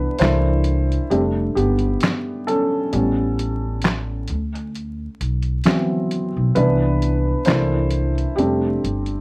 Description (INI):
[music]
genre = lo-fi hip hop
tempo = 66 BPM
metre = 4/4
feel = swing 56% on 16ths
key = C major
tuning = A4 = 443 Hz
[part]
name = felt-muted upright piano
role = accompaniment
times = 0.0-9.2 s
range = E3 to F#5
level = -20 LUFS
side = equal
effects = cassette tape, low-pass filter
[part]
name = upright bass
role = bass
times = 0.0-9.2 s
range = F1 to D2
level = -21 LUFS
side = equal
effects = none
[part]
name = dusty soul sampler-style drum kit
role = drums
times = 0.2-9.2 s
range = handclaps, hi-hat, snare drum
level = -22 LUFS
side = equal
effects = none
[sound]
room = light reverb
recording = worn, warbling old tape, cassette tape, vinyl crackle, warbly pitch drift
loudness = -17 LUFS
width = side -28 dB against mid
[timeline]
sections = 0.0-9.2 A section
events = break 0.0-9.2; felt piano solo 0.0-9.2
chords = 0.2 C13; 1.1 F69; 2.9 A7; 4.3 D13; 6.6 Cmaj9; 7.5 C13; 8.4 F69